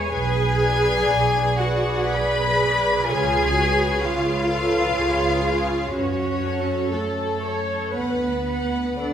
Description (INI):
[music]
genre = classical, slow romantic movement for string orchestra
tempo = 54-65 BPM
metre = 3/4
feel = rubato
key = F# minor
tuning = A4 = 438 Hz
[part]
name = warm symphonic violin section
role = melody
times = 0.0-9.1 s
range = G#4 to B5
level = -26 LUFS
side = left 5 dB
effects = none
[part]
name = warm symphonic violin section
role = second line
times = 0.0-9.0 s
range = A4 to G#5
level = -29 LUFS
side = left 1 dB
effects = none
[part]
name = rich symphonic viola section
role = accompaniment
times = 0.0-9.1 s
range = E#4 to C#5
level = -28 LUFS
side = right 2 dB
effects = none
[part]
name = warm chamber cello section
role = bass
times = 0.0-9.1 s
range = G#3 to B4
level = -24 LUFS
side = right 1 dB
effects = none
[part]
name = dark chamber double bass section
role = bass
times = 0.1-9.1 s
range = B1 to F#2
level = -27 LUFS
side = right 2 dB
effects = none
[sound]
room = wet recital hall reverb, RT60 1.3 s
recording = recorded in a church or concert hall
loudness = -19 LUFS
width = side -9 dB against mid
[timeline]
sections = 0.0-9.1 A section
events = none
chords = 0.1 G#m7b5/B; 3.1 C#7; 5.9 F#m; 7.9 Bm/D